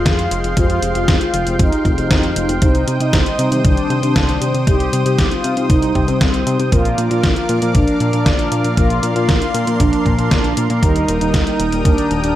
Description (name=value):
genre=italo disco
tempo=117 BPM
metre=4/4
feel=straight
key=F dorian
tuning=A4 = 439 Hz
part: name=mellow synth brass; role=melody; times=0.0-12.4 s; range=C4 to G4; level=-20 LUFS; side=equal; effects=chorus, digital delay
part: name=lush unison pad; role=sustained chords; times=0.0-12.4 s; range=Ab3 to Eb6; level=-24 LUFS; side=equal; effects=chorus
part: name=analog synth brass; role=stabs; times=0.0-12.4 s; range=Eb3 to C5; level=-23 LUFS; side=left 2 dB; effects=chorus
part: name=fat analog bass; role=bass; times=0.0-12.4 s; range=Eb1 to C3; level=-19 LUFS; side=equal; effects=none
part: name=detuned 8-bit digital drum machine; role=drums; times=0.1-12.3 s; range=hi-hat, snare drum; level=-21 LUFS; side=equal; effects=gated reverb
part: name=electronic kick drum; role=drums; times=0.1-12.0 s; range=none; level=-16 LUFS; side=equal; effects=none
room=light reverb, digital ambience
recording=none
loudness=-13 LUFS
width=side -13 dB against mid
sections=0.0-12.4 A section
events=filter sweep on analog polysynth 0.0-12.4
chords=0.0 Fmadd9; 2.6 Cm; 6.7 Bb; 10.8 Eb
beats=0.06 | 0.57 1.08 1.59 2.11 | 2.62 3.13 3.65 4.16 | 4.67 5.18 5.70 6.21 | 6.72 7.24 7.75 8.26 | 8.77 9.29 9.80 10.31 | 10.82 11.34 11.85